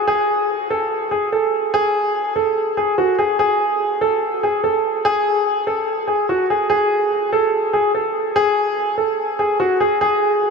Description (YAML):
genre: hip hop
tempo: 145 BPM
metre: 4/4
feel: half-time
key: unclear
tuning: A4 = 439 Hz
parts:
  - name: warm grand piano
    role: solo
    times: 0.0-10.5 s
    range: F#4 to A4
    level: -16 LUFS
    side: equal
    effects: wide subtle chorus, analog delay
room: wet huge ambient reverb, RT60 8.7 s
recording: dreamy mix soaked in reverb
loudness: -16 LUFS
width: side -4 dB against mid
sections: 0.1-10.5 A section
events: none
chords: none